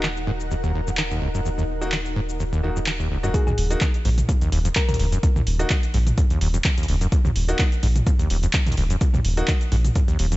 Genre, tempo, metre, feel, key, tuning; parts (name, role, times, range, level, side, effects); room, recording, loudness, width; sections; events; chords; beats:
acid house; 127 BPM; 4/4; swing 54% on 16ths; Eb minor; A4 = 439 Hz
acid bass, saw; riff; 0.0-10.4 s; Db2 to Eb3; -26 LUFS; equal; overdrive, analog chorus, sidechain pumping, tape echo
bright grand piano; stabs; 0.0-9.5 s; Bb3 to Gb4; -30 LUFS; equal; tape echo
round analog bass; bass; 0.0-10.4 s; Eb1 to Bb1; -23 LUFS; equal; sidechain pumping
punchy analog drum machine; drums; 0.0-10.4 s; cabasa, handclaps, hi-hat, toms; -27 LUFS; right 1 dB; overdrive, low-pass filter on cymbals, low-pass filter on perc, low-pass filter on snare, low-pass filter on hats, low-pass filter on toms
granular cloud pad; texture; 0.0-3.3 s; Eb4 to Gb5; -33 LUFS; left 1 dB; built-in reverb, sidechain pumping
thumb-piano-like synth pluck; melody; 3.3-5.0 s; Ab4 to Bb4; -32 LUFS; left 3 dB; chorus, tape echo
electronic kick drum; drums; 3.3-10.1 s; -20 LUFS; equal; overdrive
digital ambience; nothing above 7.9 kHz; -19 LUFS; side -18 dB against mid
0.0-3.3 A section; 3.3-10.4 B section
drop 3.3-10.4
0.0 Ebm; 3.3 Eb5
0.04 0.51 0.98 | 1.45 1.92 2.40 2.87 | 3.34 3.81 4.29 4.76 | 5.23 5.70 6.18 6.65 | 7.12 7.59 8.07 8.54 | 9.01 9.48 9.96